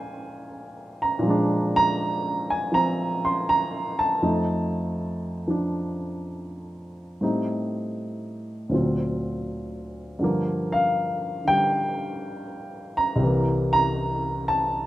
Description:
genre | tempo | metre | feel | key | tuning
solo jazz | 80 BPM | 4/4 | swing 68% on 8ths | F mixolydian | A4 = 440 Hz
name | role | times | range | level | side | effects
dark baby grand piano | solo | 0.0-14.9 s | C2 to C6 | -23 LUFS | equal | none
room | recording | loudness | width
light reverb | minimal, uncompressed stereo recording | -22 LUFS | side -15 dB against mid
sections
0.0-14.9 A section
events
none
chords
0.0 Bb7; 4.2 F7; 7.2 Am7b5; 8.7 D7alt; 10.2 Gm7; 13.2 C7

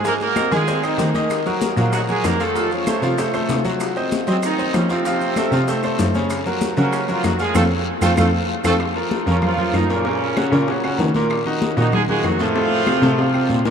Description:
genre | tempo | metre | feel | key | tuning
latin, salsa | 192 BPM | 4/4 | straight | unclear | A4 = 440 Hz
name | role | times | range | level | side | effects
clear horn section | melody | 0.0-13.6 s | C3 to Db5 | -23 LUFS | right 2 dB | none
bright grand piano | accompaniment | 0.0-13.7 s | A2 to Ab5 | -21 LUFS | equal | none
rich cello | bass | 0.0-13.7 s | F2 to Gb3 | -22 LUFS | equal | none
guiro | percussion | 0.0-13.7 s | none | -35 LUFS | left 8 dB | none
maracas | percussion | 0.0-8.7 s | none | -38 LUFS | right 6 dB | none
bongos | percussion | 0.1-13.7 s | none | -28 LUFS | left 7 dB | none
congas | percussion | 0.1-13.7 s | none | -27 LUFS | left 2 dB | none
claves | percussion | 0.4-13.5 s | none | -36 LUFS | right 4 dB | none
room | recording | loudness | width
wet huge ambient reverb, RT60 8.8 s | in a vast, echoing space | -17 LUFS | side -7 dB against mid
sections
0.0-8.8 A section; 8.8-13.7 A section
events
band accent 7.6-8.8; drum fill 8.2-8.8, 12.9-13.7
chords
0.1 Abadd9; 1.3 Ebm; 2.6 F; 3.8 Cdim; 5.1 F; 6.3 Gb; 7.6 F; 8.8 Bbm; 10.1 Gb; 11.3 Ebm; 12.6 F

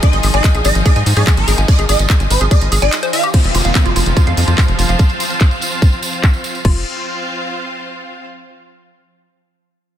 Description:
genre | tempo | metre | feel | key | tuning
psychedelic trance | 145 BPM | 4/4 | straight | F minor | A4 = 440 Hz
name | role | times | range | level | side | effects
swarming rave lead | melody | 0.0-3.2 s | Bb4 to F5 | -20 LUFS | equal | chorus, phaser, sidechain pumping, ping-pong delay
evolving wavetable pad | sustained chords | 0.0-6.7 s | F3 | -26 LUFS | right 2 dB | ensemble chorus, built-in reverb, sidechain pumping
woody wave-folded pluck | riff | 0.0-6.8 s | F4 to Ab5 | -23 LUFS | moving between left 8 dB and right 6 dB | chorus, auto-pan, sidechain pumping, ping-pong delay
electronic kick drum | drums | 0.0-6.7 s | none | -11 LUFS | equal | small room ambience
garage drum kit | drums | 0.0-6.7 s | crash cymbal, handclaps, hi-hat | -22 LUFS | left 1 dB | low-pass filter on hats, small room ambience, low-pass filter on snare, low-pass filter on cymbals
tambourine | percussion | 0.0-6.6 s | none | -26 LUFS | right 5 dB | none
bright studio string section | texture | 0.0-8.3 s | C4 to Ab5 | -24 LUFS | left 1 dB | sidechain pumping
tight sequencer bass | bass | 0.1-6.8 s | F1 to Ab2 | -15 LUFS | equal | none
downlifter | sound effects | 3.3-6.6 s | none | -24 LUFS | equal | none
room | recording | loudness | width
light reverb | dense, heavily limited modern master | -12 LUFS | side -11 dB against mid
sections
0.0-3.3 A section; 3.3-6.6 B section; 6.6-8.3 C section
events
drop 0.0-3.3; break 2.9-3.3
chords
0.0 Ab5; 3.3 F5

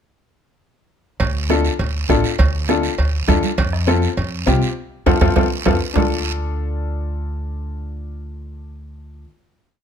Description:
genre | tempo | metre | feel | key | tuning
latin, cumbia | 202 BPM | 4/4 | straight | D minor | A4 = 440 Hz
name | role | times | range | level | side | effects
upright bass | bass | 1.2-9.2 s | A1 to F2 | -21 LUFS | equal | none
bombo | percussion | 1.2-6.0 s | none | -21 LUFS | right 3 dB | none
cowbell and timbales | percussion | 1.2-6.0 s | none | -26 LUFS | right 6 dB | none
guiro | percussion | 1.2-6.0 s | none | -29 LUFS | right 7 dB | none
clear upright piano | accompaniment | 1.5-9.3 s | C4 to A4 | -21 LUFS | left 7 dB | none
congas | percussion | 1.5-6.0 s | none | -24 LUFS | right 10 dB | none
room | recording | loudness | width
little or no reverb | close, detailed microphones | -16 LUFS | side -8 dB against mid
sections
1.2-6.0 groove; 6.0-8.3 final chord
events
drum fill 4.8-6.0; band accent 4.8-6.0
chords
1.2 Dm; 3.6 F; 6.0 Dm

